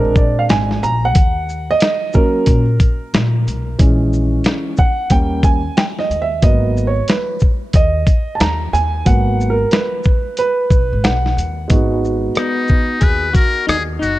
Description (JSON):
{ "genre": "hip hop, jazz-hop", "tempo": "91 BPM", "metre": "4/4", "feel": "swing 65% on 16ths", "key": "G# minor", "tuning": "A4 = 440 Hz", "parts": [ { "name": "dark concert grand piano", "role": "accompaniment", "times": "0.0-14.2 s", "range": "E3 to A#5", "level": "-18 LUFS", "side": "right 2 dB", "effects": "none" }, { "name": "upright bass", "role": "bass", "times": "0.0-14.2 s", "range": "F#1 to A#2", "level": "-19 LUFS", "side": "equal", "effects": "none" }, { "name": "dusty soul sampler-style drum kit", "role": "drums", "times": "0.2-14.2 s", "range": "hi-hat, kick drum, rim click, shaker, snare drum", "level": "-15 LUFS", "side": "equal", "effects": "vintage 12-bit sampler grit" }, { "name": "trumpet with metal mute", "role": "melody", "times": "12.4-14.2 s", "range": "D#4 to B4", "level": "-18 LUFS", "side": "left 3 dB", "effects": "none" }, { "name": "semi-hollow electric guitar", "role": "second line", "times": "12.4-14.2 s", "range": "B3 to G#4", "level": "-22 LUFS", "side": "left 4 dB", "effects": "warbly pitch drift" } ], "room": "light reverb", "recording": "dark, warm production", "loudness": "-13 LUFS", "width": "side -16 dB against mid", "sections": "0.0-11.7 A section; 11.7-14.2 B section", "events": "grand piano solo 0.0-11.7", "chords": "0.0 A#7; 1.2 D#m7; 3.8 A#m7b5; 5.1 D#7; 6.4 G#m7" }